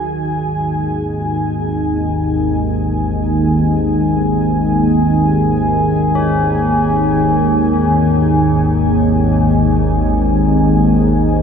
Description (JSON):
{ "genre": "dark ambient drone", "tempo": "free time", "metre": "none", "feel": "none", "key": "unclear", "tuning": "A4 = 439 Hz", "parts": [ { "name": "dark analog pad", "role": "sustained chords", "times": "0.0-11.4 s", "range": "D#3 to G#5", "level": "-16 LUFS", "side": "right 1 dB", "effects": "chorus, shimmer reverb" }, { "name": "organ-like drone", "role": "drone", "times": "0.6-11.4 s", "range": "G#1 to D#2", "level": "-15 LUFS", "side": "equal", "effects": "ensemble chorus, built-in reverb, phaser" }, { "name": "tubular bells", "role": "arpeggios", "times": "6.2-11.4 s", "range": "C#4", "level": "-26 LUFS", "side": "left 4 dB", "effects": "tape echo, shimmer reverb" } ], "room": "wet huge ambient reverb, RT60 9.4 s", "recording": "none", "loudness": "-12 LUFS", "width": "side -6 dB against mid", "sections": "0.0-11.4 A section", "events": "fade-in on tubular bells 0.0-11.4; filter sweep on synth drone 0.0-11.4", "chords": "0.0 G#5" }